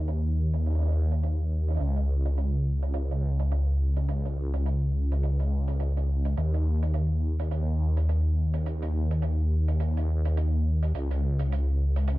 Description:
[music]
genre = glitch hop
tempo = 105 BPM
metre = 4/4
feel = swing 58% on 16ths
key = unclear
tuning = A4 = 441 Hz
[part]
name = phased detuned saw bass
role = bass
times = 0.0-12.2 s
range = Db2 to Eb2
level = -24 LUFS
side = equal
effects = phaser
[part]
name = hi-hat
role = drums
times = 0.1-12.2 s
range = none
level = -41 LUFS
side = right 5 dB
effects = low-pass filter on hats, low-pass filter on cymbals, low-pass filter on snare, low-pass filter on perc, low-pass filter on room
[sound]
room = little or no reverb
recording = dense, heavily limited modern master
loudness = -24 LUFS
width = side -18 dB against mid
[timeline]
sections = 0.0-12.2 A section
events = none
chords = none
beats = 0.09 0.66 1.23 | 1.80 2.37 2.94 3.52 | 4.09 4.66 5.23 5.80 | 6.37 6.94 7.51 8.09 | 8.66 9.23 9.80 10.37 | 10.94 11.52 12.09

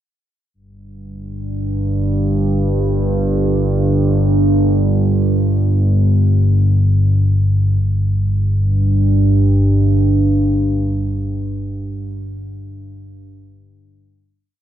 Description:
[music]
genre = ambient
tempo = free time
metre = none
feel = none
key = unclear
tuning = A4 = 440 Hz
[part]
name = analog drone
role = solo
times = 1.1-12.3 s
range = G1 to G2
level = -14 LUFS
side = equal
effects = chorus, diffuse ambient delay
[sound]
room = wet cathedral reverb, RT60 6.1 s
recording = none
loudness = -13 LUFS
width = side -11 dB against mid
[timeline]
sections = 0.5-7.8 A section; 7.8-11.4 final note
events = none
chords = none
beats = free time

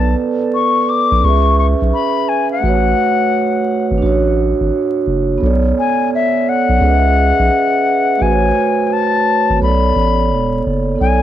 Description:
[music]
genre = lo-fi hip hop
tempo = 86 BPM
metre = 4/4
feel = swing 66% on 16ths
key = B dorian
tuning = A4 = 440 Hz
[part]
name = concert flute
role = melody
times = 0.0-11.2 s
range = E5 to D6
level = -16 LUFS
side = left 6 dB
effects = low-pass filter, cassette tape
[part]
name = vibraphone with soft mallets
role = accompaniment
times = 0.0-11.2 s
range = A3 to E5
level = -16 LUFS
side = right 4 dB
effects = low-pass filter, cassette tape
[part]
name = soft dub sub bass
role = bass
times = 0.0-11.2 s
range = E1 to C#2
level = -15 LUFS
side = equal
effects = none
[sound]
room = moderate spring reverb, RT60 2.0 s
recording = home recording on cassette, vinyl crackle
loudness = -12 LUFS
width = side -11 dB against mid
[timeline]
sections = 0.0-11.0 A section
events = none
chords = 0.0 Bm7; 1.2 C#m7; 2.6 A69; 4.0 Dmaj7; 5.4 Bm9; 6.8 C#m7; 8.2 A69; 9.6 Bm9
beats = 0.53 1.23 1.93 | 2.63 3.32 4.02 4.72 | 5.42 6.12 6.81 7.51 | 8.21 8.91 9.60 10.30 | 11.00

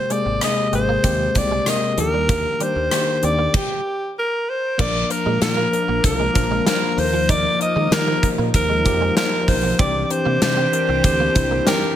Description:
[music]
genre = 1980s-style pop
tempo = 96 BPM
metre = 4/4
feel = straight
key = unclear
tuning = A4 = 440 Hz
[part]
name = raspy alto saxophone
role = melody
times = 0.0-12.0 s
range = G4 to Eb5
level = -21 LUFS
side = equal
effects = none
[part]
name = tine electric piano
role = accompaniment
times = 0.0-12.0 s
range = C3 to C5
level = -24 LUFS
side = left 4 dB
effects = none
[part]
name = direct-recorded clean electric guitar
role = riff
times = 0.1-11.8 s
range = F3 to Eb4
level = -30 LUFS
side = right 7 dB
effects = ensemble chorus, digital delay
[part]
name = gated 80s drum kit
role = drums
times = 0.1-11.8 s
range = crash cymbal, hi-hat, kick drum, rim click, snare drum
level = -21 LUFS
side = equal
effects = gated reverb
[part]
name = fingered electric bass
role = bass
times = 0.3-11.6 s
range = Ab1 to Eb3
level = -24 LUFS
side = right 1 dB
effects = none
[part]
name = phased analog pad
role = sustained chords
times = 5.5-12.0 s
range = E3 to Bb4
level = -29 LUFS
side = right 2 dB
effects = phaser, chorus
[sound]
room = light reverb, small room ambience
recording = none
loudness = -17 LUFS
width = side -11 dB against mid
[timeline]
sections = 0.0-4.8 A section; 4.8-12.0 B section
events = stop 3.5-4.8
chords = 0.0 Abmaj9; 2.0 Ebmaj7; 4.8 Bb; 7.0 Ebsus2; 9.8 Cadd9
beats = 0.41 1.04 1.66 | 2.29 2.91 3.54 4.16 | 4.79 5.41 6.04 6.66 | 7.29 7.91 8.54 9.16 | 9.79 10.41 11.04 11.66

